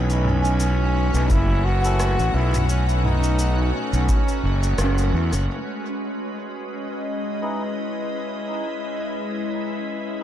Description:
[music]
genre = ambient dub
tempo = 86 BPM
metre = 4/4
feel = swing 56% on 16ths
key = C# minor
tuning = A4 = 441 Hz
[part]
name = brilliant trombone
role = melody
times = 0.0-4.7 s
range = C#4 to F#4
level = -28 LUFS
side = equal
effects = dub echo
[part]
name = soft additive organ-like pad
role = sustained chords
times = 0.0-10.2 s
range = E3 to F#5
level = -27 LUFS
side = equal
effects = ensemble chorus, built-in reverb
[part]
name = soft synth bell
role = arpeggios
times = 0.0-6.4 s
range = C#4 to G#5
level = -33 LUFS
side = right 2 dB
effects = none
[part]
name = fuzz fingered electric bass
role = bass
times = 0.0-5.5 s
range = F#1 to E2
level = -20 LUFS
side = equal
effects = overdrive
[part]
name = organic electronic drum kit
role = drums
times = 0.1-9.8 s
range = rim click, shaker, toms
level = -31 LUFS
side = equal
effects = low-pass filter on perc, low-pass filter on toms, low-pass filter on snare, low-pass filter on room, dub echo
[part]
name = electronic kick drum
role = drums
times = 1.3-4.2 s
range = none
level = -22 LUFS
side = equal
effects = none
[part]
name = melodica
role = stabs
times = 1.8-2.0, 7.4-10.2 s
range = C#4 to B4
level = -36 LUFS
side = left 1 dB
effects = none
[sound]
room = light reverb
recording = none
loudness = -20 LUFS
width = side -11 dB against mid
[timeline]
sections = 0.0-5.5 A section; 5.5-10.2 B section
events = band accent 4.8-5.1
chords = 0.0 B9sus4; 5.5 C#m9

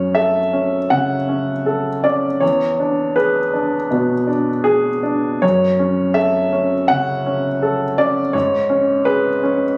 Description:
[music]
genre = neoclassical minimalist piano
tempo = 82 BPM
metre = 4/4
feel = rubato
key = F# minor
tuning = A4 = 439 Hz
[part]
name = bright upright piano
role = solo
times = 0.0-9.8 s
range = E2 to F#5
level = -18 LUFS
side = equal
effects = none
[sound]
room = light reverb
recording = recorded on a phone in the room, club reverb, compression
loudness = -18 LUFS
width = mono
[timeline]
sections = 0.0-9.8 A section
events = none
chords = 0.0 F#m7; 2.4 E7; 5.4 F#m7; 8.3 C#5/G#

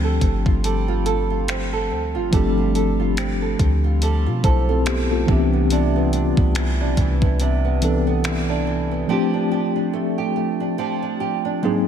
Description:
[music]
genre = contemporary R&B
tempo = 71 BPM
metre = 4/4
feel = swing 58% on 16ths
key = C major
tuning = A4 = 440 Hz
[part]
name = tine electric piano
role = accompaniment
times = 0.0-11.9 s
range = E3 to C5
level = -22 LUFS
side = left 2 dB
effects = medium stereo tremolo
[part]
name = nylon-string guitar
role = arpeggios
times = 0.0-11.9 s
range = Ab2 to A4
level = -25 LUFS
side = right 7 dB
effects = lush chorus, analog delay
[part]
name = soft 808-style bass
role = bass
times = 0.0-9.0 s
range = G1 to B2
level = -21 LUFS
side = equal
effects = none
[part]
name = gated 80s digital drum machine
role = drums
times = 0.2-8.5 s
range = finger snaps, hi-hat, kick drum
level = -23 LUFS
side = equal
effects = none
[sound]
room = light reverb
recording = none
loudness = -18 LUFS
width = side -8 dB against mid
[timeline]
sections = 0.0-11.9 A section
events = break 9.1-11.9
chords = 0.0 G9sus4; 5.3 Cmaj9; 9.1 F69

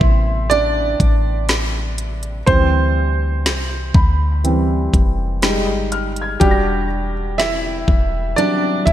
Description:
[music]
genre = contemporary R&B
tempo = 61 BPM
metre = 4/4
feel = straight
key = A dorian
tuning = A4 = 441 Hz
[part]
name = warm grand piano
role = accompaniment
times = 0.0-8.9 s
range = C3 to E5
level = -19 LUFS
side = right 2 dB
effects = analog chorus
[part]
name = clean 808-style bass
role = bass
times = 0.0-8.9 s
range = D1 to D2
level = -20 LUFS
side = equal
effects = none
[part]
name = trap drum kit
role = drums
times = 0.0-8.9 s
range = hi-hat, kick drum, snare drum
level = -17 LUFS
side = equal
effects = gated reverb
[part]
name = felt-muted upright piano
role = texture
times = 0.0-7.4 s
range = B5 to Bb6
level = -30 LUFS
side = left 2 dB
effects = digital delay
[sound]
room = light reverb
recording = bright 1980s-style digital production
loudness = -15 LUFS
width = side -12 dB against mid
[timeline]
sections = 0.0-8.9 A section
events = grand piano solo 0.0-8.9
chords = 0.0 Am7; 2.5 D7sus4; 5.4 Fm7; 6.4 Em7

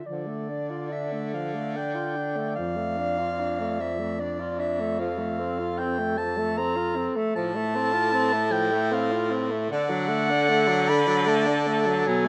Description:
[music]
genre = classical, lyrical piece for single-reed quartet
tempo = 76 BPM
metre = 3/4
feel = rubato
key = D minor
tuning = A4 = 439 Hz
[part]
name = mellow soprano saxophone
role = melody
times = 0.0-12.3 s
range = D5 to B5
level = -31 LUFS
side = equal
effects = none
[part]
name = dark clarinet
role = second line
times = 0.0-12.3 s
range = A4 to D5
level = -34 LUFS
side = equal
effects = none
[part]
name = mellow tenor saxophone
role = accompaniment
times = 0.1-12.3 s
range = D3 to F4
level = -31 LUFS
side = equal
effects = none
[part]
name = warm baritone saxophone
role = bass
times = 0.1-12.3 s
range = F2 to D3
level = -31 LUFS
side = equal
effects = none
[sound]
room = moderate recital hall reverb, RT60 1.5 s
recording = none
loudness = -26 LUFS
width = mono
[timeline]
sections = 0.1-12.3 A section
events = none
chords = 0.1 Dm; 2.6 Dm/F; 5.0 F; 7.4 F/A; 9.7 D

